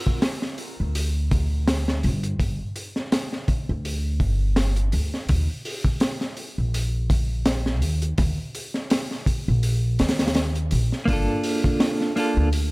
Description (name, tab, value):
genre	trip hop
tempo	83 BPM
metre	4/4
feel	swing 56% on 16ths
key	G minor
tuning	A4 = 439 Hz
part	crunchy breakbeat drum kit	drums	0.1-12.7 s	hi-hat, kick drum, snare drum	-24 LUFS	equal	none
part	upright bass	bass	0.8-12.7 s	G1 to Eb2	-23 LUFS	equal	none
part	clean electric guitar	accompaniment	11.1-12.5 s	Bb3 to A4	-24 LUFS	right 1 dB	tremolo, tape echo
room	small room ambience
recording	none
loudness	-21 LUFS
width	side -24 dB against mid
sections	0.0-12.7 A section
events	none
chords	0.0 G5; 5.3 Eb5; 11.1 Gm7 (rootless)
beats	0.24 0.96 1.68 | 2.40 3.13 3.85 4.57 | 5.30 6.02 6.74 7.46 | 8.19 8.91 9.63 10.36 | 11.08 11.80 12.53